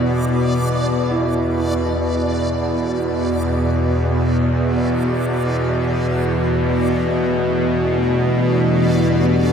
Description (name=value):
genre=dark ambient drone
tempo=free time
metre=none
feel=none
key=E minor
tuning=A4 = 440 Hz
part: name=warm concert grand piano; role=arpeggios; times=0.0-9.5 s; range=B2 to E4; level=-28 LUFS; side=right 3 dB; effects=tape echo, shimmer reverb
part: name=bowed-like drone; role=drone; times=0.0-9.5 s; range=E2 to B2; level=-17 LUFS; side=equal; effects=built-in reverb
part: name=backwards swelling texture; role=texture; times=0.0-9.5 s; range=D5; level=-29 LUFS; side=right 1 dB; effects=built-in reverb, shimmer reverb
part: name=deep dark ambient pad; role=sustained chords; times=5.9-9.5 s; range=E3 to B4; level=-22 LUFS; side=equal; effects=chorus, built-in reverb
room=wet cathedral reverb, RT60 5.1 s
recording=none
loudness=-16 LUFS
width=side -7 dB against mid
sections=0.0-9.5 A section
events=none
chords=0.0 Em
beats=free time